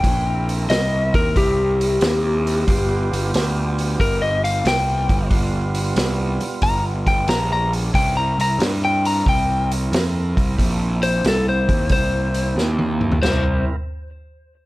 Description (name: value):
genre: blues rock power trio and southern rock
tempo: 91 BPM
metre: 4/4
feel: swing 68% on 8ths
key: C mixolydian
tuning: A4 = 440 Hz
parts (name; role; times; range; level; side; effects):
- lightly driven lead guitar; melody; 0.0-13.6 s; G4 to Bb5; -21 LUFS; left 2 dB; plate reverb
- overdriven tonewheel organ; sustained chords; 0.0-13.8 s; G3 to B4; -29 LUFS; right 3 dB; wide subtle chorus, plate reverb
- fuzz picked electric bass; bass; 0.0-13.6 s; G1 to G2; -21 LUFS; equal; overdrive
- vintage drum kit; drums; 0.0-13.4 s; crash cymbal, hi-hat, kick drum, snare drum, toms; -22 LUFS; equal; none
room: light reverb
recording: none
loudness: -17 LUFS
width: side -19 dB against mid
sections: 0.0-13.2 A section; 13.2-14.7 B section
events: lead electric guitar solo 0.0-13.2; drum fill 12.6-13.2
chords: 0.0 C7; 2.7 G7; 7.9 C7